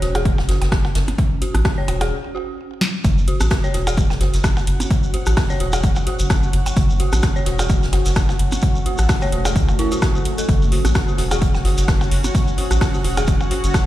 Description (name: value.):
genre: minimal techno.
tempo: 129 BPM.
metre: 4/4.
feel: swing 55% on 16ths.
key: F# minor.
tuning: A4 = 440 Hz.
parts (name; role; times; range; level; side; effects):
dark detuned synth bell; riff; 0.0-13.6 s; E4 to C#5; -27 LUFS; equal; chorus, sidechain pumping, ping-pong delay.
round analog bass; bass; 0.0-13.7 s; E1 to C#2; -19 LUFS; equal; sidechain pumping.
booming analog drum machine; drums; 0.0-13.8 s; hi-hat, rim click, snare drum; -26 LUFS; equal; none.
jazz brush drum kit; drums; 0.0-13.9 s; hi-hat, snare drum; -34 LUFS; right 2 dB; high-pass filter on hats, high-pass filter on snare, high-pass filter on room.
swarming drone; texture; 0.0-2.1 s; C#4; -37 LUFS; right 3 dB; built-in reverb, sidechain pumping.
percussion blips; percussion; 0.1-13.5 s; none; -30 LUFS; right 2 dB; digital delay.
electronic kick drum; drums; 0.3-13.8 s; none; -18 LUFS; equal; overdrive.
shekere; percussion; 3.0-13.8 s; none; -32 LUFS; right 1 dB; none.
granular cloud pad; texture; 4.3-13.9 s; A3 to F#5; -27 LUFS; left 1 dB; built-in reverb, sidechain pumping.
room: little or no reverb.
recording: played on a big sound system in a bare room, large studio reverb.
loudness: -16 LUFS.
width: side -14 dB against mid.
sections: 0.0-3.0 A section; 3.0-13.9 B section.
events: break 2.1-3.0; drum fill 2.8; drop 3.0-13.9.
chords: 0.0 F#5.